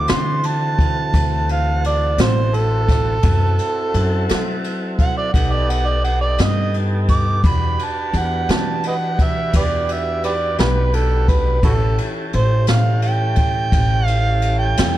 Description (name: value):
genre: slow blues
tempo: 57 BPM (dotted quarters)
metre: 12/8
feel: straight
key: D mixolydian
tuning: A4 = 441 Hz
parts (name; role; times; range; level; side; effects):
- overdriven harmonica; second line; 0.0-14.9 s; E4 to D6; -21 LUFS; right 4 dB; analog delay
- tonewheel organ; sustained chords; 0.0-15.0 s; E3 to B4; -27 LUFS; equal; slow rotary speaker
- upright bass; bass; 0.0-15.0 s; A1 to F#3; -19 LUFS; left 1 dB; none
- jazz brush drum kit; drums; 0.1-14.9 s; kick drum, ride cymbal, snare drum; -21 LUFS; equal; none
room: light reverb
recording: dark, warm production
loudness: -15 LUFS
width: side -14 dB against mid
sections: 0.0-15.0 A section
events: harmonica solo 0.0-15.0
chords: 0.0 D7; 3.2 F#m7b5; 5.3 Baug7; 7.4 Em7; 11.6 A7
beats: 0.08 1.14 2.19 | 3.24 4.29 5.34 6.39 | 7.44 8.49 9.54 10.58 | 11.63 12.68 13.72 14.77